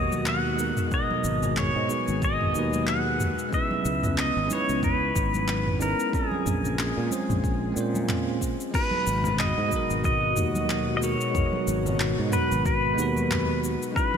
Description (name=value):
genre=sunset chillout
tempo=92 BPM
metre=4/4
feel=swing 57% on 16ths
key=G# minor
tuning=A4 = 439 Hz
part: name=pedal steel guitar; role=melody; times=0.0-14.2 s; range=G#4 to F#5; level=-28 LUFS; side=left 1 dB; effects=wide subtle chorus, digital delay
part: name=bell-like tine electric piano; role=accompaniment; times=0.0-14.2 s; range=G#3 to B#4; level=-30 LUFS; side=right 1 dB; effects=auto-pan, digital delay
part: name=airy breathy pad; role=sustained chords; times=0.0-14.2 s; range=B2 to G#4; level=-33 LUFS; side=equal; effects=chorus
part: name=sustaining fretless electric bass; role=bass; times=0.0-13.8 s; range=G#1 to A#2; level=-29 LUFS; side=equal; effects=lush chorus
part: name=deep house drum kit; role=drums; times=0.1-14.1 s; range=cabasa, crash cymbal, handclaps, toms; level=-32 LUFS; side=equal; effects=none
part: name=congas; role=percussion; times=0.1-14.2 s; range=none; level=-36 LUFS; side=right 2 dB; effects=none
part: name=electronic kick drum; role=drums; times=0.9-14.1 s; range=none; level=-28 LUFS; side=equal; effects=none
room=moderate lush hall reverb, RT60 3.2 s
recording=bright 1980s-style digital production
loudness=-23 LUFS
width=side -7 dB against mid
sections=0.0-8.7 A section; 8.7-14.2 B section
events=none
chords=0.0 G#m9; 3.5 C#m9; 6.1 A#m9; 8.7 G#m9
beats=0.27 | 0.92 1.57 2.22 2.87 | 3.53 4.18 4.83 5.48 | 6.13 6.79 7.44 8.09 | 8.74 9.40 10.05 10.70 | 11.35 12.00 12.66 13.31 | 13.96